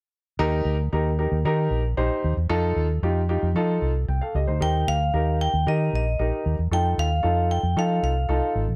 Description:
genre	uptempo 1960s-style soul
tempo	114 BPM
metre	4/4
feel	straight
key	Eb major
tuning	A4 = 440 Hz
part	warm grand piano	accompaniment	0.4-8.6 s	Eb4 to G5	-29 LUFS	equal	none
part	vintage muted fingered electric bass	bass	0.4-8.8 s	Ab1 to F3	-26 LUFS	equal	none
part	vibraphone with medium hard mallets	melody	4.6-8.5 s	Eb5 to G5	-28 LUFS	equal	none
room	light reverb, small room ambience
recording	dark, warm production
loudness	-23 LUFS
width	mono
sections	0.4-4.6 A section; 4.6-8.8 B section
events	none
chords	0.4 Eb; 2.5 F7; 4.6 Eb; 6.7 F7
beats	| 0.39 0.92 1.45 1.97 | 2.50 3.03 3.56 4.08 | 4.61 5.13 5.66 6.18 | 6.71 7.24 7.76 8.29

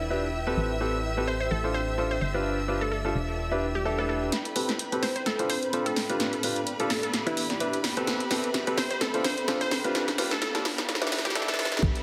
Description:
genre	piano house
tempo	128 BPM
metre	4/4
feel	swing 56% on 16ths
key	A minor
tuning	A4 = 435 Hz
part	glassy wavetable pluck	melody	0.0-11.7 s	E4 to C5	-35 LUFS	equal	chorus, digital delay
part	clear symphonic violin section	sustained chords	0.0-12.0 s	B4 to E6	-39 LUFS	equal	sidechain pumping
part	organ-like FM bass	bass	0.0-4.3, 11.8-11.9 s	E1 to A1	-34 LUFS	equal	sidechain pumping
part	granular cloud pad	texture	0.0-11.8 s	B3 to A5	-39 LUFS	equal	built-in reverb, sidechain pumping
part	clear baby grand piano	riff	0.1-11.8 s	C4 to C5	-32 LUFS	equal	sidechain pumping, low-pass filter, digital delay
part	punchy analog drum machine	drums	4.3-12.0 s	hi-hat, snare drum	-32 LUFS	equal	overdrive
part	electronic kick drum	drums	11.8-11.9 s	none	-28 LUFS	equal	none
room	moderate plate reverb, RT60 1.3 s, digital ambience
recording	heavily compressed radio sound, high-pass filter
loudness	-28 LUFS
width	mono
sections	0.0-4.3 A section; 4.3-11.8 B section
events	build-up 4.3-11.8; drum fill 4.3-11.8; filter sweep on grand piano 4.3-11.8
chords	0.0 Em7; 0.6 Am9; 1.5 Dm7/A; 2.2 G7; 3.2 Em7; 4.3 Am9; 5.3 Dm7/A; 6.0 G7; 6.9 Em7; 8.1 Am9; 9.0 Dm7/A; 9.7 G7; 10.7 Em7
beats	0.10 | 0.57 1.04 1.51 1.98 | 2.45 2.92 3.39 3.85 | 4.32 4.79 5.26 5.73 | 6.20 6.67 7.14 7.61 | 8.07 8.54 9.01 9.48 | 9.95 10.42 10.89 11.36 | 11.82

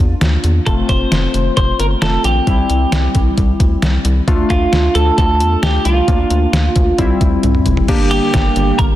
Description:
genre	synth-pop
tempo	133 BPM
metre	4/4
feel	straight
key	unclear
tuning	A4 = 443 Hz
part	warm analog keys	accompaniment	0.0-9.0 s	G3 to G4	-19 LUFS	left 2 dB	chorus
part	rubbery square bass	bass	0.0-8.9 s	F1 to E2	-16 LUFS	equal	none
part	detuned 8-bit digital drum machine	drums	0.2-8.9 s	crash cymbal, hi-hat, kick drum, snare drum, toms	-16 LUFS	equal	none
part	twelve-string electric guitar	melody	0.7-8.8 s	F4 to C5	-19 LUFS	right 1 dB	tape echo
part	warm analog pad	sustained chords	7.9-9.0 s	D3 to G4	-22 LUFS	right 2 dB	chorus
room	moderate concert hall reverb, RT60 1.9 s, digital ambience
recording	dense, heavily limited modern master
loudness	-12 LUFS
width	side -14 dB against mid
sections	0.0-7.9 A section; 7.9-9.0 B section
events	drum fill 7.4-7.9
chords	0.0 Bb; 0.7 F; 2.5 C; 4.3 Dm; 6.1 Bb/D; 7.0 C; 7.9 Gm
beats	0.22 | 0.67 1.12 1.57 2.02 | 2.47 2.92 3.37 3.83 | 4.28 4.73 5.18 5.63 | 6.08 6.53 6.98 7.43 | 7.88 8.34 8.79

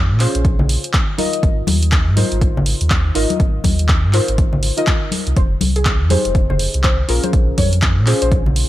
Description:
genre	deep house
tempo	122 BPM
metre	4/4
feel	swing 60% on 16ths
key	Ab major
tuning	A4 = 443 Hz
part	deep mellow chord stab	stabs	0.0-8.7 s	Db4 to Eb5	-23 LUFS	left 2 dB	chorus, cassette tape, sidechain pumping, dub echo
part	sub bass with octave	bass	0.0-8.6 s	F1 to Bb2	-17 LUFS	equal	sidechain pumping
part	punchy analog drum machine	drums	0.2-8.7 s	handclaps, hi-hat	-22 LUFS	right 1 dB	none
part	electronic kick drum	drums	0.4-8.4 s	none	-17 LUFS	equal	none
part	congas	percussion	0.6-8.5 s	none	-23 LUFS	left 4 dB	none
part	soft round pluck	melody	5.4-8.7 s	Ab4 to Db5	-25 LUFS	right 1 dB	lush chorus, ping-pong delay
room	little or no reverb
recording	none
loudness	-14 LUFS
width	side -15 dB against mid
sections	0.0-8.7 A section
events	none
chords	0.0 Bbm9; 1.4 Ab6; 5.4 Fm9; 7.1 Bbm9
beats	0.45 0.94 | 1.43 1.92 2.42 2.91 | 3.40 3.89 4.38 4.87 | 5.37 5.86 6.35 6.84 | 7.33 7.83 8.32

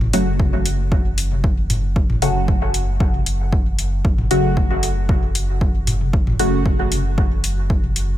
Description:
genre	dub techno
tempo	115 BPM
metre	4/4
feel	straight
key	F# minor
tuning	A4 = 440 Hz
part	filtered dub chord stab	stabs	0.0-8.2 s	C#3 to F#4	-22 LUFS	equal	phaser, dub echo
part	soft dub sub bass	bass	0.0-8.2 s	F#1	-21 LUFS	equal	sidechain pumping
part	electronic toms	percussion	0.0-7.9 s	none	-27 LUFS	left 2 dB	sidechain pumping on toms, small room ambience
part	electronic hi-hat	drums	0.1-8.1 s	none	-25 LUFS	left 2 dB	overdrive, small room ambience
part	electronic kick drum	drums	0.4-7.8 s	none	-19 LUFS	equal	overdrive, small room ambience
room	digital ambience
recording	none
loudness	-16 LUFS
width	side -13 dB against mid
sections	0.0-8.2 A section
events	none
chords	0.0 F#m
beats	0.40 0.92 1.44 | 1.96 2.48 3.00 3.52 | 4.05 4.57 5.09 5.61 | 6.13 6.66 7.18 7.70

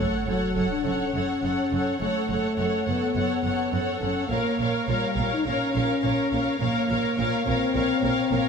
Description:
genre	cinematic, epic orchestral film score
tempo	104 BPM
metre	4/4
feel	straight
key	unclear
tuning	A4 = 440 Hz
part	warm symphonic violin section	melody	0.0-8.5 s	E#5 to F#5	-32 LUFS	left 2 dB	none
part	dark symphonic violin section	second line	0.0-8.5 s	C#5	-32 LUFS	left 2 dB	none
part	rich symphonic viola section	accompaniment	0.0-8.5 s	A4 to A#4	-30 LUFS	right 2 dB	none
part	dark French horn section	sustained chords	0.0-8.5 s	F#3 to D#4	-26 LUFS	left 3 dB	none
part	dark symphonic cello section	bass	0.0-8.4 s	F#2 to A#2	-33 LUFS	right 4 dB	none
part	warm symphonic double bass section	bass	0.0-8.4 s	F#1 to A#1	-32 LUFS	right 4 dB	none
part	sub drop	sound effects	0.0-2.0 s	none	-37 LUFS	equal	none
room	moderate scoring stage reverb, RT60 1.7 s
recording	none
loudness	-22 LUFS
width	side -6 dB against mid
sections	0.0-8.5 A section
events	impact 0.0-2.0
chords	0.0 F#m; 4.3 A#m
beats	0.27 0.85 1.43 | 2.00 2.58 3.16 3.73 | 4.31 4.88 5.46 6.03 | 6.60 7.17 7.74 8.32

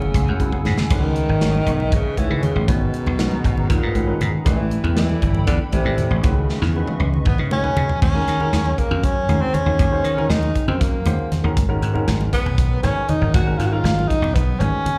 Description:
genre	electric jazz fusion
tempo	236 BPM (eighths)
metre	7/8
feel	straight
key	unclear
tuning	A4 = 440 Hz
part	breathy tenor saxophone	melody	0.0-15.0 s	A#2 to F#4	-26 LUFS	equal	slapback echo, plate reverb
part	warm baby grand piano	accompaniment	0.0-15.0 s	C#3 to D5	-30 LUFS	equal	plate reverb, slapback echo
part	hollow soft pad	sustained chords	0.0-8.0 s	A3 to E6	-37 LUFS	equal	ensemble chorus, plate reverb
part	dry thumbed slap bass	bass	0.0-14.9 s	G1 to D#3	-23 LUFS	equal	none
part	congas	percussion	0.0-15.0 s	none	-30 LUFS	equal	none
part	modern studio drum kit	drums	0.1-15.0 s	crash cymbal, hi-hat, kick drum, snare drum, toms	-24 LUFS	equal	none
room	light reverb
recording	live gig heard through the venue's PA, club reverb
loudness	-19 LUFS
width	mono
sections	0.0-8.0 A section; 8.0-15.0 B section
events	drum fill 0.3-0.9, 6.5-8.0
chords	0.0 F#m9; 0.9 C#m9; 2.7 G#m9; 4.5 Am9; 6.2 C#m9; 8.0 D#m7; 11.6 G#m11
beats	0.14 0.40 0.65 | 0.91 1.16 1.41 1.67 1.92 2.18 2.43 | 2.69 2.94 3.19 3.45 3.70 3.96 4.21 | 4.46 4.72 4.97 5.23 5.48 5.73 5.99 | 6.24 6.50 6.75 7.00 7.26 7.51 7.76 | 8.02 8.27 8.53 8.78 9.03 9.29 9.54 | 9.79 10.05 10.30 10.55 10.81 11.06 11.32 | 11.57 11.82 12.07 12.33 12.58 12.84 13.09 | 13.34 13.59 13.85 14.10 14.35 14.61 14.86

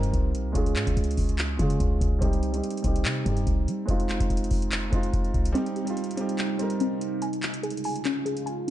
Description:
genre	hip hop, trap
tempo	144 BPM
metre	4/4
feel	half-time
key	C phrygian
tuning	A4 = 443 Hz
part	warm concert grand piano	accompaniment	0.0-7.2 s	G3 to Bb4	-29 LUFS	right 3 dB	low-pass filter
part	clean 808-style bass	bass	0.0-5.6 s	F1 to G3	-27 LUFS	equal	none
part	booming analog drum machine	drums	0.0-8.7 s	handclaps, hi-hat, kick drum	-28 LUFS	equal	none
part	warbly dusty pluck	arpeggios	5.5-8.7 s	C4 to Ab5	-30 LUFS	left 3 dB	chorus, low-pass filter, tape echo
part	deep dark ambient pad	sustained chords	6.1-8.7 s	C3 to F4	-32 LUFS	right 1 dB	chorus, built-in reverb
room	digital ambience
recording	dark, warm production, nothing above 10.3 kHz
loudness	-24 LUFS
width	side -13 dB against mid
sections	0.0-8.7 A section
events	filter sweep 0.0-5.6; break 5.6-8.7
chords	0.0 Cm; 0.6 Db; 2.2 Cm; 3.9 Fm7; 5.6 Cm; 7.2 Db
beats	0.14 | 0.55 0.97 1.39 1.80 | 2.22 2.63 3.05 3.47 | 3.88 4.30 4.72 5.13 | 5.55 5.97 6.38 6.80 | 7.22 7.63 8.05 8.47

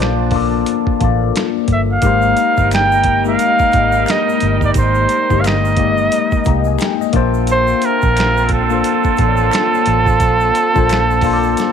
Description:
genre	R&B, neo-soul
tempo	88 BPM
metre	4/4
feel	swing 60% on 16ths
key	unclear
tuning	A4 = 443 Hz
part	clear flugelhorn	melody	0.0-11.7 s	A4 to G5	-16 LUFS	right 2 dB	none
part	tine electric piano	accompaniment	0.0-11.7 s	Ab3 to Bb5	-18 LUFS	left 16 dB	phaser
part	mellow horn section	stabs	0.0-11.7 s	D3 to A5	-23 LUFS	right 14 dB	none
part	vintage muted fingered electric bass	bass	0.0-11.5 s	G1 to C2	-18 LUFS	right 1 dB	none
part	dusty soul sampler-style drum kit	drums	0.0-11.7 s	finger snaps, hi-hat, kick drum, snare drum	-20 LUFS	right 1 dB	none
part	egg shaker and finger snaps	percussion	2.0-11.7 s	none	-35 LUFS	left 4 dB	none
room	light reverb, small room ambience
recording	1960s-style stereo with parts hard left and right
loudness	-12 LUFS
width	side -8 dB against mid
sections	0.0-11.7 A section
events	tine electric piano fill 6.1-7.5; drum fill 11.6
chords	0.0 Bbmaj9; 2.0 Abmaj9; 7.1 Bbmaj9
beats	0.66 1.34 | 2.02 2.71 3.39 4.07 | 4.75 5.43 6.11 6.80 | 7.48 8.16 8.84 9.52 | 10.21 10.89 11.57

